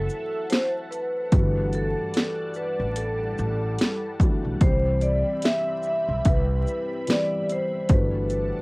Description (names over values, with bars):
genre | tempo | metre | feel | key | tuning
lo-fi hip hop | 73 BPM | 4/4 | swing 57% on 16ths | E minor | A4 = 441 Hz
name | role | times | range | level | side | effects
vibraphone with medium mallets | melody | 0.0-8.6 s | A4 to E5 | -27 LUFS | equal | low-pass filter
felt-muted upright piano | accompaniment | 0.0-8.6 s | E3 to G4 | -31 LUFS | left 1 dB | low-pass filter, cassette tape
lush unison pad | sustained chords | 0.0-8.6 s | G3 to B5 | -37 LUFS | equal | chorus, phaser, low-pass filter, cassette tape
upright bass | bass | 0.0-8.5 s | G1 to C2 | -26 LUFS | equal | none
techno drum kit | drums | 0.1-8.5 s | hi-hat, kick drum, shaker, snare drum | -21 LUFS | equal | none
room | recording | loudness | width
light reverb | home recording on cassette, vinyl crackle | -22 LUFS | side -26 dB against mid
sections
0.0-8.6 A section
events
none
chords
0.0 F#m7b5; 1.3 Em11/G; 4.6 Cmaj7; 7.9 Em11/G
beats
0.50 | 1.32 2.14 2.96 3.79 | 4.61 5.43 6.25 7.07 | 7.90